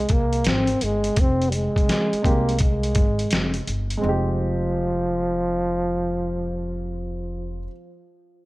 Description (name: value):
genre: hip hop, jazz-hop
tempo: 84 BPM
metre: 4/4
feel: swing 66% on 16ths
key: F minor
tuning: A4 = 439 Hz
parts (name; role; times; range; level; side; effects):
- dark trombone; melody; 0.0-7.7 s; F3 to C4; -24 LUFS; equal; analog delay
- upright bass; bass; 0.0-7.7 s; F1 to C2; -27 LUFS; equal; none
- trip hop sampler-style drum kit; drums; 0.1-4.0 s; hi-hat, kick drum, snare drum; -22 LUFS; equal; vintage 12-bit sampler grit
- dark upright piano; accompaniment; 2.2-7.7 s; Ab3 to G4; -29 LUFS; right 1 dB; none
room: studio reverb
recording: none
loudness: -20 LUFS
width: side -20 dB against mid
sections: 0.0-4.0 A section; 4.0-6.9 B section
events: none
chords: 0.0 Fmadd9; 4.0 Fm9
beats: 0.46 | 1.17 1.89 2.60 3.31 | 4.03 4.74 5.46 6.17